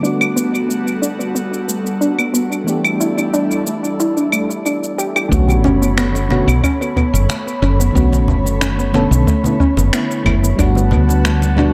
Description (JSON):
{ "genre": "sunset chillout", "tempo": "91 BPM", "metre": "4/4", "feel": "straight", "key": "B minor", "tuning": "A4 = 439 Hz", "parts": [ { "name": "mellow FM electric piano", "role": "accompaniment", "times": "0.0-11.7 s", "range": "D3 to A4", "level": "-23 LUFS", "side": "equal", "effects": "chorus, tremolo, analog delay" }, { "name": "airy breathy pad", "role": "sustained chords", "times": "0.0-11.7 s", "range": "G3 to B5", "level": "-25 LUFS", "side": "equal", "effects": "chorus" }, { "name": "soft round pluck", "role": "arpeggios", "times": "0.0-11.7 s", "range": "A3 to G4", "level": "-22 LUFS", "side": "equal", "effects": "lush chorus, analog delay" }, { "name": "electronic shaker, claves and finger snaps", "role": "drums", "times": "0.0-11.6 s", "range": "none", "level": "-24 LUFS", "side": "equal", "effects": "tape echo" }, { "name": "woody fretless electric bass", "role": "bass", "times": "5.3-11.7 s", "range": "F#1 to D2", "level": "-17 LUFS", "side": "equal", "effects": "none" }, { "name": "electronic kick drum", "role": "drums", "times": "5.3-11.1 s", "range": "none", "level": "-21 LUFS", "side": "equal", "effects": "overdrive" }, { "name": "congas", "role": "percussion", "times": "5.3-11.7 s", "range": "none", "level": "-28 LUFS", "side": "equal", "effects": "none" } ], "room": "moderate spring reverb, RT60 2.6 s", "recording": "echo-heavy mix", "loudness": "-16 LUFS", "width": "mono", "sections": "0.0-5.3 A section; 5.3-11.7 B section", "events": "filter sweep on synth pluck 0.0-5.3", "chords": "0.0 Gmaj9; 2.7 A7sus4; 5.3 Bm9; 10.6 Gmaj9" }